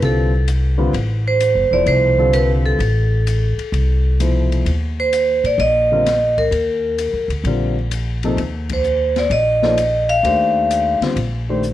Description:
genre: modal jazz.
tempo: 129 BPM.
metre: 4/4.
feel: swing 68% on 8ths.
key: Eb lydian.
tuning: A4 = 435 Hz.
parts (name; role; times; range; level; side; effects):
vibraphone with medium hard mallets; melody; 0.0-11.0 s; A4 to F5; -17 LUFS; right 1 dB; none.
dark baby grand piano; accompaniment; 0.0-11.6 s; Cb3 to D5; -22 LUFS; left 2 dB; none.
upright bass; bass; 0.0-11.7 s; E1 to Bb2; -19 LUFS; equal; none.
open jazz drum kit; drums; 0.0-11.7 s; hi-hat, kick drum, ride cymbal, snare drum; -30 LUFS; left 6 dB; none.
room: light reverb, small room ambience.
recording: 1960s-style stereo.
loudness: -15 LUFS.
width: side -13 dB against mid.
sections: 0.0-11.7 A section.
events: band accent 8.6.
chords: 0.0 Fmaj9; 4.7 Ebmaj9.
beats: 0.01 0.48 | 0.94 1.41 1.87 2.34 | 2.80 3.27 3.73 4.20 | 4.66 5.13 5.59 6.06 | 6.52 6.99 7.45 7.92 | 8.38 8.85 9.31 9.77 | 10.24 10.70 11.16 11.62.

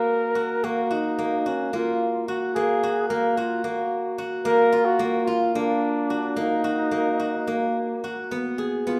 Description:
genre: contemporary instrumental, chamber music in an uneven meter.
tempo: 219 BPM (eighths).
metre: 7/8.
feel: straight.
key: unclear.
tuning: A4 = 440 Hz.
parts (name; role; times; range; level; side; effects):
mellow flugelhorn; melody; 0.0-9.0 s; Db4 to Bb4; -27 LUFS; equal; none.
steel-string zither; arpeggios; 0.0-9.0 s; Bb3 to Ab4; -26 LUFS; equal; none.
room: wet recital hall reverb, RT60 1.4 s.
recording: none.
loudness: -24 LUFS.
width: mono.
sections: 0.0-8.3 A section.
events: none.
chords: 0.0 Gb/Bb; 4.5 Bb; 6.4 Ebm; 8.3 Abm7.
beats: 0.09 0.36 | 0.64 0.92 1.19 1.47 1.74 2.02 2.29 | 2.56 2.83 3.10 3.37 3.65 3.92 4.19 | 4.46 4.73 5.00 5.27 5.55 5.82 6.09 | 6.37 6.64 6.92 7.19 7.47 7.75 8.03 | 8.31 8.59 8.87.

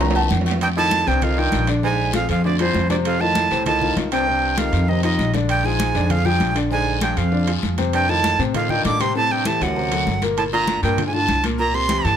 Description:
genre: Afro-Cuban jazz.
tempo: 197 BPM.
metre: 4/4.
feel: straight.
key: F mixolydian.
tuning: A4 = 440 Hz.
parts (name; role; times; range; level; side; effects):
warm grand piano; accompaniment; 0.0-12.1 s; Bb2 to Bb5; -24 LUFS; left 5 dB; none.
upright bass; bass; 0.0-12.2 s; G1 to A2; -22 LUFS; equal; none.
congas; percussion; 0.0-12.0 s; none; -28 LUFS; left 2 dB; none.
guiro; percussion; 0.0-12.2 s; none; -32 LUFS; left 8 dB; none.
timbales and agogo bells; percussion; 0.0-12.2 s; none; -31 LUFS; right 6 dB; none.
breathy bright jazz flute; melody; 0.6-12.2 s; C5 to D6; -21 LUFS; right 2 dB; none.
mellow baritone saxophone; second line; 0.6-12.2 s; C2 to D3; -26 LUFS; right 6 dB; none.
room: moderate studio reverb, RT60 0.6 s.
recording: none.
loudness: -17 LUFS.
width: side -9 dB against mid.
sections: 0.6-12.2 A section.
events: drum fill 0.0-0.6.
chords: 0.0 C7; 0.6 F9; 1.8 Bb9; 3.1 F7; 4.3 Cm; 4.9 F5; 5.5 Bb9; 7.9 F7; 9.2 Am7; 9.8 D7; 10.4 Gm7; 11.6 C7.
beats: 0.00 0.30 | 0.61 0.92 1.22 1.52 | 1.83 2.13 2.44 2.75 | 3.05 3.36 3.66 3.97 | 4.27 4.58 4.88 5.19 | 5.49 5.80 6.10 6.41 | 6.71 7.02 7.32 7.63 | 7.93 8.24 8.54 8.85 | 9.15 9.46 9.76 10.07 | 10.37 10.68 10.98 11.29 | 11.59 11.90.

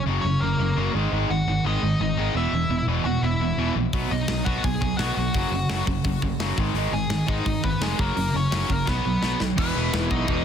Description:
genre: punk rock.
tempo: 170 BPM.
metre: 4/4.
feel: straight.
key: B major.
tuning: A4 = 440 Hz.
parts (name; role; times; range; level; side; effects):
nasal lead guitar with a parked wah; melody; 0.0-10.4 s; G#3 to G#5; -28 LUFS; left 2 dB; overdrive, ping-pong delay.
distorted electric guitar; riff; 0.0-10.4 s; E2 to B3; -27 LUFS; right 10 dB; distortion.
tight distorted guitar; riff; 0.0-10.4 s; E2 to B3; -28 LUFS; left 12 dB; distortion.
sustaining fretless electric bass; bass; 0.1-10.4 s; E1 to B1; -27 LUFS; equal; none.
tight metal drum kit; drums; 3.9-10.4 s; crash cymbal, hi-hat, kick drum, snare drum; -28 LUFS; equal; none.
crunchy overdriven guitar; riff; 9.6-10.4 s; E2 to E3; -30 LUFS; left 1 dB; none.
room: little or no reverb.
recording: dense, heavily limited modern master.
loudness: -21 LUFS.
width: side -8 dB against mid.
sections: 0.0-9.6 A section.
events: drum fill 8.9-9.6.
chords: 0.0 F#; 0.9 G#5; 2.4 E5; 3.9 B; 5.3 F#5; 6.6 G#m; 8.0 F#; 8.9 B5; 9.6 E5.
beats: 0.07 0.42 0.77 | 1.13 1.48 1.83 2.18 | 2.53 2.89 3.24 3.59 | 3.94 4.29 4.65 5.00 | 5.35 5.70 6.05 6.41 | 6.76 7.11 7.46 7.82 | 8.17 8.52 8.87 9.22 | 9.57 9.93 10.28.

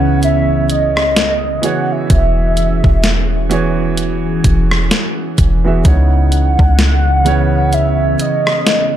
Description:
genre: contemporary R&B.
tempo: 64 BPM.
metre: 4/4.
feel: swing 58% on 16ths.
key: C# minor.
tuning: A4 = 440 Hz.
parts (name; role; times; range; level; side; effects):
warm velvety synth lead; melody; 0.0-9.0 s; D#5 to F#5; -18 LUFS; equal; chorus, ping-pong delay.
warm concert grand piano; accompaniment; 0.0-9.0 s; C#3 to E5; -19 LUFS; right 5 dB; none.
glassy FM pad; sustained chords; 0.0-9.0 s; C#3 to G#4; -20 LUFS; left 1 dB; ensemble chorus, built-in reverb.
soft 808-style bass; bass; 0.0-8.2 s; E1 to C#2; -15 LUFS; equal; none.
crisp 8-bit digital drum machine; drums; 0.2-8.9 s; hi-hat, kick drum, rim click, snare drum; -15 LUFS; equal; none.
room: little or no reverb.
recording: dark, warm production.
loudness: -11 LUFS.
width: side -11 dB against mid.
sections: 0.0-9.0 A section.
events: none.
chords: 0.0 C#m9; 1.6 E69; 5.9 C#m9.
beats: 0.23 1.17 | 2.10 3.04 3.98 4.92 | 5.85 6.79 7.73 8.66.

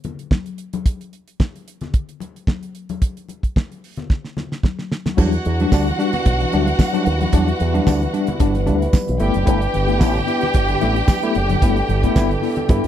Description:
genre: disco.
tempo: 112 BPM.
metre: 4/4.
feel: straight.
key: unclear.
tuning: A4 = 440 Hz.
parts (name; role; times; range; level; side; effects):
damped 70s drum kit; drums; 0.0-12.9 s; crash cymbal, hi-hat, kick drum, snare drum; -16 LUFS; right 1 dB; none.
congas; percussion; 0.0-12.7 s; none; -30 LUFS; left 6 dB; none.
rich studio violin section; second line; 5.2-12.9 s; F#4 to G5; -23 LUFS; right 1 dB; none.
tine electric piano; accompaniment; 5.2-12.9 s; G2 to E4; -21 LUFS; left 3 dB; overdrive, fast stereo tremolo.
dark French horn section; sustained chords; 5.2-12.9 s; E3 to B4; -26 LUFS; right 2 dB; none.
fingered electric bass with an envelope filter; bass; 5.2-12.9 s; F#1 to G2; -20 LUFS; right 1 dB; none.
tambourine; percussion; 5.7-12.3 s; none; -37 LUFS; right 21 dB; none.
room: little or no reverb.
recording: dry, close 1970s-style studio recording.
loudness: -16 LUFS.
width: side -10 dB against mid.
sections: 0.0-5.2 A section; 5.2-12.9 B section.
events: drum fill 4.1-5.2.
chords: 0.0 N.C.; 5.2 Em7; 9.2 G6.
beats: 0.31 | 0.86 1.40 1.94 2.48 | 3.02 3.56 4.10 4.64 | 5.18 5.71 6.25 6.79 | 7.33 7.86 8.40 8.94 | 9.47 10.01 10.54 11.08 | 11.62 12.15 12.69.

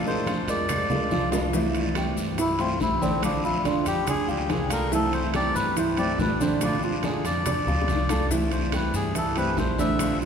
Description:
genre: latin, Cuban son and guajira.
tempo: 142 BPM.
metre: 4/4.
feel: straight.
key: C major.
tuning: A4 = 439 Hz.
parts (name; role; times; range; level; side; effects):
fingerpicked steel-string acoustic guitar; accompaniment; 0.0-10.3 s; C3 to F4; -29 LUFS; left 2 dB; none.
upright bass; bass; 0.0-10.3 s; Bb1 to G2; -31 LUFS; equal; none.
melodica; melody; 0.1-10.2 s; C4 to E5; -28 LUFS; left 2 dB; none.
dark grand piano; arpeggios; 0.1-10.3 s; D3 to D6; -28 LUFS; right 4 dB; none.
congas; percussion; 0.1-10.3 s; none; -35 LUFS; equal; none.
maracas; percussion; 0.1-10.3 s; none; -42 LUFS; left 6 dB; none.
bongos; percussion; 0.3-10.2 s; none; -36 LUFS; left 4 dB; none.
guiro; percussion; 0.3-10.3 s; none; -40 LUFS; right 2 dB; none.
timbales; percussion; 0.3-10.2 s; none; -36 LUFS; right 4 dB; none.
claves; percussion; 0.7-1.5 s; none; -44 LUFS; left 3 dB; none.
room: wet cathedral reverb, RT60 5.9 s.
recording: recorded in a church or concert hall.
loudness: -22 LUFS.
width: side -7 dB against mid.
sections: 0.0-1.5 A section; 1.5-10.3 B section.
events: drum fill 0.9-1.5, 7.7-8.3; melodica solo 1.5-10.3.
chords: 0.0 Bb7; 1.5 C69; 3.2 Bb7; 4.9 C69; 6.6 Bb7; 8.3 C69.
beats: 0.27 0.69 1.11 | 1.54 1.96 2.38 2.81 | 3.23 3.65 4.07 4.50 | 4.92 5.34 5.77 6.19 | 6.61 7.04 7.46 7.88 | 8.30 8.73 9.15 9.57 | 10.00.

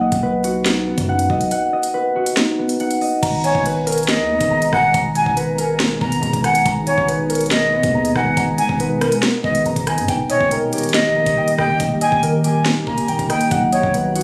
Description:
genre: hip hop, drill.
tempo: 140 BPM.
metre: 4/4.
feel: half-time.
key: G# minor.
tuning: A4 = 442 Hz.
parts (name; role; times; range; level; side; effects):
concert harp; arpeggios; 0.0-14.2 s; A#3 to A#5; -23 LUFS; equal; low-pass filter, digital delay.
long sustained 808-style bass; bass; 0.0-14.2 s; D#1 to G#2; -27 LUFS; equal; none.
drill drum kit; drums; 0.1-14.2 s; crash cymbal, hi-hat, kick drum, rim click, snare drum; -24 LUFS; equal; none.
glassy FM pad; sustained chords; 4.0-14.2 s; B2 to A#5; -27 LUFS; equal; ensemble chorus, built-in reverb, phaser.
jazz flute; second line; 3.4-13.9 s; C#5 to A#5; -22 LUFS; equal; digital delay.
room: light reverb, digital ambience.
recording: recorded on a phone in the room, studio reverb.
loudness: -18 LUFS.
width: mono.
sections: 0.0-3.2 A section; 3.2-14.2 B section.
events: kick muted 1.5-3.2.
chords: 0.0 B; 3.2 G#madd9; 10.1 D#; 13.5 B.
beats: 0.23 0.66 1.08 | 1.51 1.94 2.37 2.80 | 3.23 3.66 4.08 4.51 | 4.94 5.37 5.80 6.23 | 6.66 7.08 7.51 7.94 | 8.37 8.80 9.23 9.66 | 10.09 10.51 10.94 11.37 | 11.80 12.23 12.66 13.09 | 13.51 13.94.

